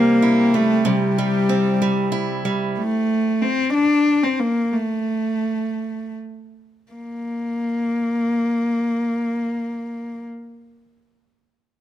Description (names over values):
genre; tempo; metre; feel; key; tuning
pop; 50-64 BPM (dotted quarters); 6/8; straight; unclear; A4 = 442 Hz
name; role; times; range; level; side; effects
warm cello; melody; 0.0-10.2 s; G3 to D4; -19 LUFS; left 1 dB; none
picked steel-string acoustic guitar; accompaniment; 0.0-3.3 s; C3 to E4; -22 LUFS; right 4 dB; none
room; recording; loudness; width
light reverb; none; -18 LUFS; side -11 dB against mid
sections
0.0-6.9 A section; 6.9-11.6 B section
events
slowing down 2.7-6.9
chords
0.0 C; 2.7 N.C.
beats
| 0.86 1.80 | 2.75 3.70 | 4.69 5.75 | 6.90 8.09 | 9.27